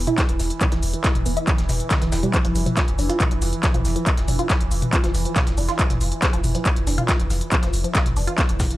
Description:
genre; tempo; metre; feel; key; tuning
driving peak-time techno; 139 BPM; 4/4; straight; unclear; A4 = 440 Hz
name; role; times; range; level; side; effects
saturated sub bass; bass; 0.0-8.7 s; E1 to F1; -24 LUFS; equal; tube saturation, sidechain pumping, low-pass filter
deep dark ambient pad; drone; 0.0-8.8 s; E3; -31 LUFS; right 4 dB; chorus, built-in reverb, sidechain pumping
resonant blip pluck; riff; 0.1-8.4 s; D3 to F4; -28 LUFS; equal; phaser, tube saturation, sidechain pumping, tape echo
techno drum kit; drums; 0.1-8.8 s; handclaps, hi-hat, toms; -25 LUFS; equal; overdrive, studio reverb
breakbeat sampler-style drum kit; drums; 0.2-8.7 s; hi-hat, shaker, snare drum; -34 LUFS; left 1 dB; high-pass filter on perc, studio reverb, high-pass filter on hats, high-pass filter on snare
electronic kick drum; drums; 0.2-8.7 s; none; -21 LUFS; equal; studio reverb
room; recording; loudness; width
little or no reverb; dry, gritty hardware recording; -18 LUFS; side -16 dB against mid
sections
0.0-8.8 A section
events
none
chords
0.0 N.C.; 2.3 Dmadd9/F (rootless)

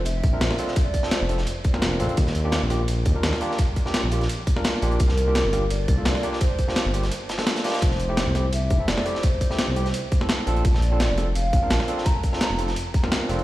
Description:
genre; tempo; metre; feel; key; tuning
liquid drum and bass; 170 BPM; 4/4; swing 53% on 16ths; unclear; A4 = 437 Hz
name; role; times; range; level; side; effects
hollow clarinet-like synth lead; melody; 0.0-1.6, 5.0-13.1 s; Bb4 to Bb5; -30 LUFS; right 1 dB; analog chorus, cassette tape, digital delay
smooth synth bass; bass; 0.0-13.4 s; F1 to Eb2; -23 LUFS; equal; none
breakbeat sampler-style drum kit; drums; 0.1-13.4 s; hi-hat, ride cymbal, snare drum; -28 LUFS; equal; none
crunchy breakbeat drum kit; drums; 0.1-13.4 s; hi-hat, snare drum; -33 LUFS; equal; high-pass filter on hats, high-pass filter on snare, high-pass filter on room
electronic kick drum; drums; 0.2-13.0 s; none; -21 LUFS; equal; none
overdriven tine electric piano; accompaniment; 0.3-13.4 s; A3 to Bb4; -28 LUFS; equal; ping-pong delay
room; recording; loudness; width
little or no reverb; played on a big sound system in a bare room, stone room reverb; -20 LUFS; side -16 dB against mid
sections
0.0-13.4 A section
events
none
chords
0.0 Bbmaj9; 2.2 Ebmaj9; 5.0 C7sus4; 7.8 Fmaj9; 10.5 Bbmaj9

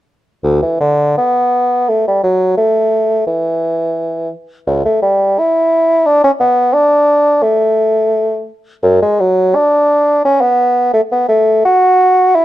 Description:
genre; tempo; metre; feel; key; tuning
classical, baroque-style fantasia for unaccompanied bassoon; 86 BPM; 3/4; rubato; D major; A4 = 440 Hz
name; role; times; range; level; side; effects
mellow bassoon; solo; 0.4-12.4 s; C#2 to F#4; -10 LUFS; equal; none
room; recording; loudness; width
light reverb; dark, warm production; -10 LUFS; side -14 dB against mid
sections
0.4-12.4 A section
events
none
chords
none

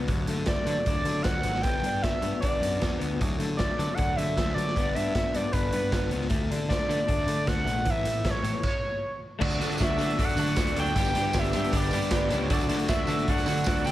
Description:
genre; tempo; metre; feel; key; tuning
indie rock; 154 BPM; 4/4; straight; D major; A4 = 440 Hz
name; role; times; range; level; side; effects
electric guitar through a small old amp; riff; 0.0-13.9 s; E3 to G4; -32 LUFS; left 6 dB; none
fuzz picked electric bass; bass; 0.0-13.9 s; G1 to D3; -31 LUFS; equal; overdrive
raw garage drum kit; drums; 0.1-13.9 s; crash cymbal, hi-hat, kick drum, snare drum; -29 LUFS; equal; none
overdriven synth lead; melody; 0.5-13.9 s; B4 to G5; -30 LUFS; right 1 dB; slapback echo
tonewheel organ; sustained chords; 9.4-13.9 s; A4 to D6; -41 LUFS; right 1 dB; none
twelve-string electric guitar; riff; 9.4-13.9 s; G2 to D4; -34 LUFS; right 8 dB; wide subtle chorus, slapback echo
tambourine; percussion; 9.5-13.9 s; none; -43 LUFS; right 5 dB; none
bell-like tine electric piano; second line; 12.1-12.8 s; B4 to D5; -38 LUFS; right 4 dB; none
room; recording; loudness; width
little or no reverb; none; -24 LUFS; side -14 dB against mid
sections
0.0-9.4 A section; 9.4-13.9 B section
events
stop 8.6-9.4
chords
0.1 D; 1.7 G; 3.2 D; 4.8 G; 6.3 D; 7.9 A; 9.4 D; 11.0 G; 12.5 D

